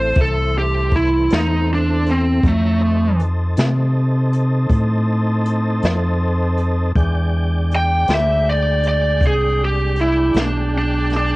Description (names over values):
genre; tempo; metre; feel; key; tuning
slow blues; 53 BPM (dotted quarters); 12/8; straight; unclear; A4 = 440 Hz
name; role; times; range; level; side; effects
lead guitar through a small cranked amp; melody; 0.0-11.4 s; A3 to G5; -18 LUFS; right 1 dB; overdrive
tonewheel organ; sustained chords; 0.0-11.4 s; E3 to Bb5; -26 LUFS; equal; chorus vibrato, wide subtle chorus
deep dub fingered electric bass; bass; 0.0-11.4 s; A1 to C3; -18 LUFS; equal; none
jazz brush drum kit; drums; 0.2-11.3 s; hi-hat, kick drum, snare drum; -20 LUFS; equal; cassette tape
room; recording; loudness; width
small room ambience; home recording on cassette; -15 LUFS; side -20 dB against mid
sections
0.0-11.4 A section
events
lead electric guitar solo 0.0-11.4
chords
0.0 Am; 2.4 F7; 7.0 E7#9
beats
0.18 1.31 | 2.44 3.58 4.71 5.83 | 6.96 8.09 9.22 10.35